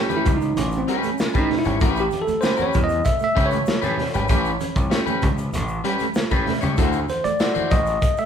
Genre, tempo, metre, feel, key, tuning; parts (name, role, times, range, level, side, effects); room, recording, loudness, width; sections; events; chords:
funk; 97 BPM; 4/4; straight; A mixolydian; A4 = 440 Hz
bell-like tine electric piano; melody; 0.0-8.3 s; C4 to E5; -23 LUFS; equal; fast stereo tremolo
electric guitar at the edge of break-up; accompaniment; 0.0-7.8 s; C#4 to C#5; -26 LUFS; left 4 dB
mellow electric guitar; riff; 0.1-8.3 s; F#3 to C#4; -31 LUFS; right 8 dB
crunchy breakbeat drum kit; drums; 0.1-8.3 s; hi-hat, kick drum, snare drum; -23 LUFS; equal
congas; percussion; 0.1-8.3 s; -33 LUFS; right 5 dB
egg shaker; percussion; 0.1-8.3 s; -45 LUFS; left 4 dB
gritty slap bass; bass; 0.3-8.0 s; G#1 to A2; -26 LUFS; equal; overdrive
moderate large studio reverb, RT60 1.3 s; band playing live in one room; -18 LUFS; side -8 dB against mid
0.0-8.3 A section
tine electric piano solo 0.0-8.3
0.0 A9; 6.8 D9